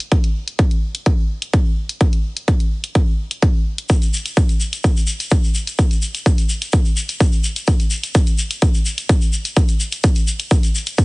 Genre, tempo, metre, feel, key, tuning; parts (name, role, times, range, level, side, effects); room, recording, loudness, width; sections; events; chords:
house; 127 BPM; 4/4; straight
electronic hi-hat; drums; 0.0-11.0 s; -28 LUFS; left 1 dB
electronic kick drum; drums; 0.1-11.0 s; -15 LUFS; equal
tube shaker; percussion; 3.9-11.0 s; -26 LUFS; left 2 dB
little or no reverb; heavily compressed radio sound, multiband compression, nothing above 10.3 kHz; -15 LUFS; side -26 dB against mid
0.0-11.0 A section